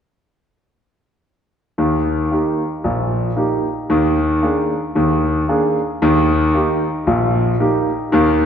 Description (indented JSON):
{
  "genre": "jazz, stride piano",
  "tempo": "114 BPM",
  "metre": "4/4",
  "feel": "swing 58% on 8ths",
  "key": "Eb major",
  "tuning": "A4 = 441 Hz",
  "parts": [
    { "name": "clear concert grand piano", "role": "solo", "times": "1.8-8.5 s", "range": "Bb1 to Ab4", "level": "-15 LUFS", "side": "equal", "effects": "none" }
  ],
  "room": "wet concert hall reverb, RT60 1.9 s",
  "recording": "heard from further back in the room",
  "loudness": "-15 LUFS",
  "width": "side -8 dB against mid",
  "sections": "1.8-8.5 A section",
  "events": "none",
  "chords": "1.8 Eb; 3.9 Bb7/Eb; 6.0 Eb"
}